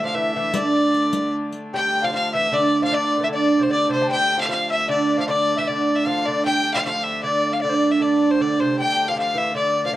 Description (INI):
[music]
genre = medieval dance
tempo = 153 BPM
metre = 3/4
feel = straight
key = D minor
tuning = A4 = 439 Hz
[part]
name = bright fiddle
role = melody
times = 0.0-10.0 s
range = C5 to G5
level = -21 LUFS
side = left 1 dB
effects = cassette tape
[part]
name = lute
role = second line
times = 0.0-10.0 s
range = C3 to G3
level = -22 LUFS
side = right 4 dB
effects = cassette tape
[part]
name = mellow tenor recorder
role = second line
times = 0.0-10.0 s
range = C5 to A5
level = -26 LUFS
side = left 4 dB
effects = cassette tape
[part]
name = clear hurdy-gurdy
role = drone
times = 0.0-10.0 s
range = D3 to A3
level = -32 LUFS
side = left 1 dB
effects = cassette tape
[part]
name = riq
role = percussion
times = 0.5-1.6 s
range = none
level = -28 LUFS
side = left 4 dB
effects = none
[sound]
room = moderate spring reverb, RT60 1.4 s, small room ambience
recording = home recording on cassette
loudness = -18 LUFS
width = side -14 dB against mid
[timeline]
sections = 0.0-1.7 A section; 1.7-10.0 B section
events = none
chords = none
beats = 0.15 | 0.54 0.94 1.34 | 1.73 2.13 2.52 | 2.92 3.31 3.71 | 4.10 4.49 4.89 | 5.28 5.67 6.06 | 6.45 6.84 7.24 | 7.63 8.02 8.40 | 8.79 9.18 9.57 | 9.96